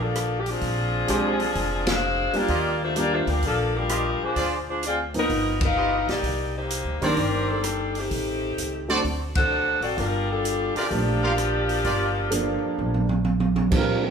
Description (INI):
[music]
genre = jazz, big band swing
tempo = 128 BPM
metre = 4/4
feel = swing 67% on 8ths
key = G minor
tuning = A4 = 441 Hz
[part]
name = mellow saxophone section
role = melody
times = 0.0-13.2 s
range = Eb3 to F#5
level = -24 LUFS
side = left 2 dB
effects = none
[part]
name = upright bass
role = bass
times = 0.0-14.1 s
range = F1 to Bb2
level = -29 LUFS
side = equal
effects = none
[part]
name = open jazz drum kit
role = drums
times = 0.2-13.9 s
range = crash cymbal, hi-hat, kick drum, ride cymbal, rim click, snare drum, toms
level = -28 LUFS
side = right 2 dB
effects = none
[part]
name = warm concert grand piano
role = accompaniment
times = 1.1-14.1 s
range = Eb3 to A4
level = -28 LUFS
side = right 2 dB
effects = none
[part]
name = clear trumpet section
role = stabs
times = 1.1-12.1 s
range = C4 to F5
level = -29 LUFS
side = right 1 dB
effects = none
[part]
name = mellow trombone section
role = second line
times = 13.7-14.1 s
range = G3 to Bb4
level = -25 LUFS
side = right 4 dB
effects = none
[sound]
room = moderate large studio reverb, RT60 1.4 s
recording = band playing live in one room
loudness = -22 LUFS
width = side -6 dB against mid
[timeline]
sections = 0.0-13.7 A section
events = band accent 1.8, 5.5, 9.3; drum fill 12.8-13.7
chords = 0.0 Gm7 (rootless); 0.6 Bb13; 2.5 Ebmaj9; 4.4 Dm7b5; 5.3 G7alt; 6.2 Cm9; 8.1 Am7b5; 9.0 D7; 10.0 Gm7